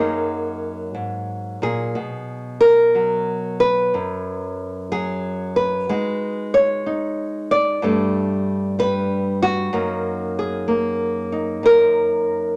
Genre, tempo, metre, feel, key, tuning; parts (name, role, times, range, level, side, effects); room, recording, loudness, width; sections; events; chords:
solo jazz; 62 BPM; 4/4; swing 66% on 8ths, rubato; F# major; A4 = 439 Hz
nylon-string guitar; solo; 0.0-12.6 s; F#2 to D5; -21 LUFS; equal
light reverb; -21 LUFS; mono
0.0-12.6 A section
0.0 F#69; 2.0 B5; 5.9 G#5; 7.8 Gsus2; 9.7 F#69